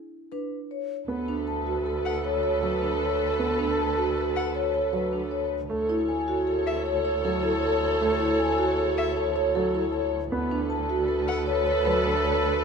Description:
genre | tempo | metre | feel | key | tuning
classical, minimalist pattern music | 156 BPM | 6/4 | straight | unclear | A4 = 440 Hz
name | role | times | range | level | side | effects
vibraphone with medium mallets | melody | 0.3-12.5 s | G#4 to A5 | -31 LUFS | left 10 dB | none
marimba with soft mallets | arpeggios | 0.3-12.3 s | D4 to C#5 | -29 LUFS | right 4 dB | none
bright alto flute | second line | 1.1-12.6 s | A4 | -30 LUFS | right 2 dB | none
dark baby grand piano | accompaniment | 1.1-12.1 s | F#3 to B3 | -30 LUFS | right 1 dB | none
rich symphonic violin section | sustained chords | 1.1-12.6 s | A4 to C#5 | -32 LUFS | left 1 dB | none
rich double bass | bass | 1.1-12.6 s | D2 | -32 LUFS | right 2 dB | none
rich violin | arpeggios | 2.1-11.4 s | E5 to F#5 | -34 LUFS | left 4 dB | none
room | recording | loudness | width
moderate large studio reverb, RT60 1.2 s | minimal, uncompressed stereo recording | -23 LUFS | side -6 dB against mid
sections
0.0-1.1 A section; 1.1-12.6 B section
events
none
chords
0.0 E7(no3) (rootless); 1.1 Bm7/D; 5.7 A6/D; 10.3 Bm7/D

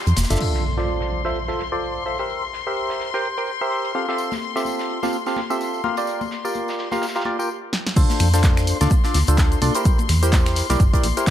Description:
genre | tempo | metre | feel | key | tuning
piano house | 127 BPM | 4/4 | swing 58% on 16ths | D minor | A4 = 442 Hz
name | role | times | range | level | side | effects
dark chamber string section | sustained chords | 0.0-11.3 s | C6 | -30 LUFS | left 8 dB | sidechain pumping, low-pass filter
plucky analog bass | bass | 0.1-0.4, 8.0-11.1 s | F1 to F2 | -19 LUFS | equal | sidechain pumping
tight metal drum kit | drums | 0.1-11.3 s | hi-hat, shaker, snare drum | -35 LUFS | right 1 dB | sidechain pumping on hats, high-pass filter on hats, low-pass filter on hats, high-pass filter on snare, low-pass filter on snare, sidechain pumping on perc, high-pass filter on perc, low-pass filter on perc, high-pass filter on room, low-pass filter on room
tambourine and congas | percussion | 0.1-0.4, 4.2-11.3 s | none | -32 LUFS | left 7 dB | none
punchy analog drum machine | drums | 0.2-0.5, 7.7-11.3 s | crash cymbal, finger snaps, handclaps, hi-hat, shaker, snare drum | -26 LUFS | equal | none
percussive organ stab | riff | 0.3-11.3 s | C4 to G5 | -24 LUFS | equal | chorus, sidechain pumping, ping-pong delay
impact | sound effects | 0.4-2.3 s | none | -27 LUFS | equal | none
electronic kick drum | drums | 8.0-11.3 s | none | -17 LUFS | equal | none
room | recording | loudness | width
light reverb, studio ambience | none | -19 LUFS | side -11 dB against mid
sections
0.4-8.0 A section; 8.0-11.3 B section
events
break 0.0-0.4; impact 0.4-2.3; filter sweep on synth stab 0.4-8.0; stop 7.5-8.0; drum fill 7.7; drop 8.0-11.3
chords
0.4 Dm7; 2.3 C7; 3.9 Fmaj9/C; 5.8 Bb6; 8.0 Dm7; 9.9 C7

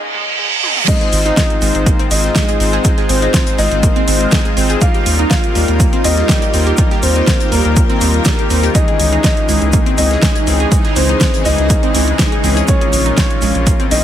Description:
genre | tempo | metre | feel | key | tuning
progressive house | 122 BPM | 4/4 | straight | Ab major | A4 = 438 Hz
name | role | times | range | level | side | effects
reverse cymbal | sound effects | 0.0-0.9 s | none | -17 LUFS | right 5 dB | none
analog pluck | arpeggios | 0.1-14.0 s | G3 to Ab4 | -22 LUFS | right 2 dB | chorus, sidechain pumping, ping-pong delay
deep house drum kit | drums | 0.6-14.0 s | crash cymbal, hi-hat, snare drum, toms | -19 LUFS | equal | overdrive
dark baby grand piano | melody | 0.9-14.0 s | Bb3 to F5 | -20 LUFS | left 2 dB | ping-pong delay
shimmering ambient pad | sustained chords | 2.3-14.0 s | Db3 to G4 | -22 LUFS | right 2 dB | chorus, built-in reverb, phaser, sidechain pumping
soft supersaw | stabs | 0.9-14.0 s | Ab2 to C5 | -21 LUFS | left 3 dB | sidechain pumping, ping-pong delay
damped 70s drum kit | drums | 0.9-14.0 s | hi-hat, shaker, snare drum | -27 LUFS | left 1 dB | high-pass filter on hats, high-pass filter on snare, high-pass filter on perc, high-pass filter on room
electronic kick drum | drums | 0.9-13.8 s | none | -15 LUFS | equal | overdrive
saturated sub bass | bass | 1.1-14.0 s | Ab1 to Eb2 | -16 LUFS | equal | sidechain pumping
room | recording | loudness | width
light reverb, studio reverb | high-pass filter | -11 LUFS | side -10 dB against mid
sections
0.9-14.0 A section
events
break 0.0-0.9; reverse cymbal 0.0-0.9; drum fill 0.6; drop 0.9-14.0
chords
0.0 N.C.; 0.9 Ab6; 4.8 Ebadd9; 8.8 Dbmadd9; 12.7 Bbm

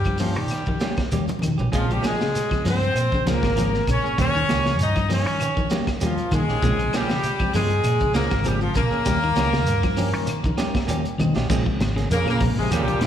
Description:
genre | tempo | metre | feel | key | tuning
afrobeat | 98 BPM | 4/4 | swing 54% on 16ths | Bb dorian | A4 = 442 Hz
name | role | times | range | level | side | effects
clear horn section | melody | 0.0-13.1 s | F3 to Eb5 | -24 LUFS | left 1 dB | slapback echo
fingered electric bass | bass | 0.0-13.1 s | Ab1 to Eb3 | -24 LUFS | equal | none
shekere | percussion | 0.0-13.1 s | none | -33 LUFS | right 2 dB | none
electric guitar at the edge of break-up | arpeggios | 0.1-13.1 s | Db3 to Ab3 | -30 LUFS | left 7 dB | spring reverb, slapback echo
semi-hollow electric guitar | stabs | 0.1-13.1 s | F3 to Ab4 | -30 LUFS | right 6 dB | slapback echo
crunchy breakbeat drum kit | drums | 0.1-13.1 s | crash cymbal, hi-hat, kick drum, snare drum, toms | -27 LUFS | equal | none
claves | percussion | 0.1-12.9 s | none | -37 LUFS | left 4 dB | none
congas | percussion | 0.2-13.1 s | none | -31 LUFS | right 1 dB | none
tine electric piano | accompaniment | 1.7-12.7 s | Db3 to G5 | -31 LUFS | left 1 dB | overdrive, fast stereo tremolo, slapback echo
brilliant trombone | second line | 12.1-13.1 s | Ab2 to Db3 | -30 LUFS | right 3 dB | slapback echo
room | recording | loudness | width
small room ambience | live gig heard through the venue's PA, recital hall reverb | -19 LUFS | side -10 dB against mid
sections
0.0-11.5 A section; 11.5-13.1 B section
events
drum fill 1.3-1.7, 11.2-11.5; tine electric piano fill 10.6-11.5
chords
0.0 Eb7; 1.7 Bbm7; 4.2 Eb7; 6.6 Bbm7; 9.1 Eb7; 11.5 Bbm7

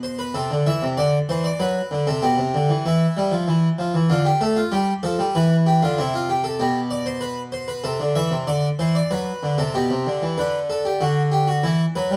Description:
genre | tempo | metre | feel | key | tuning
classical, baroque-style two-part invention for harpsichord | 96 BPM | 3/4 | straight | unclear | A4 = 439 Hz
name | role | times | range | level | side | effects
harpsichord | solo | 0.0-12.2 s | B2 to E5 | -21 LUFS | equal | none
room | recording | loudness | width
light reverb | close, detailed microphones | -21 LUFS | mono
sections
0.0-10.4 A section; 10.4-12.2 B section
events
none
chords
0.3 Am/C; 1.0 D7; 2.2 G/B; 2.8 Em; 4.1 Dm; 4.7 G7; 6.0 C; 6.6 G/B; 7.8 Am/C; 8.5 D7; 9.7 G/B; 10.4 Bm/D; 11.6 Em

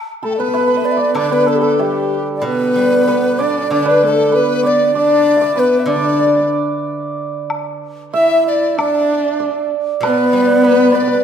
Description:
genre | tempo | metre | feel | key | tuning
chinese traditional, Chinese chamber ensemble | 96 BPM | 2/4 | rubato | unclear | A4 = 440 Hz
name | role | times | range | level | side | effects
breathy bright xiao | melody | 0.2-11.2 s | G4 to B5 | -17 LUFS | equal | none
hammered dulcimer | second line | 0.2-11.2 s | G4 to E5 | -20 LUFS | right 6 dB | none
mellow hollow large dizi | second line | 0.2-11.2 s | G4 to E5 | -19 LUFS | left 6 dB | none
warm horsehead fiddle | second line | 0.2-11.2 s | G3 to E4 | -19 LUFS | right 3 dB | none
woodblock | percussion | 0.5-1.9, 7.5-10.2 s | none | -26 LUFS | left 3 dB | none
steel-string zither | accompaniment | 1.1-7.8, 10.0-11.2 s | B2 to B3 | -20 LUFS | left 3 dB | none
room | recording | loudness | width
moderate concert hall reverb, RT60 1.8 s | minimal, uncompressed stereo recording | -12 LUFS | side -8 dB against mid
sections
0.0-2.4 A section; 2.4-11.2 B section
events
none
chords
none

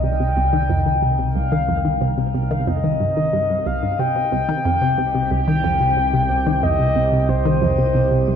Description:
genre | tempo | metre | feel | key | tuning
ambient, sequencer-driven space music | 91 BPM | 4/4 | straight | C minor | A4 = 442 Hz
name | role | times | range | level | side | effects
mellow horn-like synth lead | melody | 0.0-8.4 s | C5 to G5 | -20 LUFS | left 1 dB | chorus, shimmer reverb, tape echo
sweeping resonant pad | sustained chords | 0.0-8.4 s | C3 to Bb4 | -32 LUFS | left 2 dB | chorus, shimmer reverb
resonant blip pluck | riff | 0.0-8.4 s | C2 to Eb3 | -20 LUFS | equal | chorus, tape echo
analog drone | bass | 0.0-8.4 s | C2 | -24 LUFS | right 1 dB | chorus
room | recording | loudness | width
moderate plate reverb, RT60 2.9 s | echo-heavy mix, nothing above 7.5 kHz | -16 LUFS | side -8 dB against mid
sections
0.0-8.4 A section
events
fade-in on analog synth pad 0.0-8.4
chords
0.0 Cm

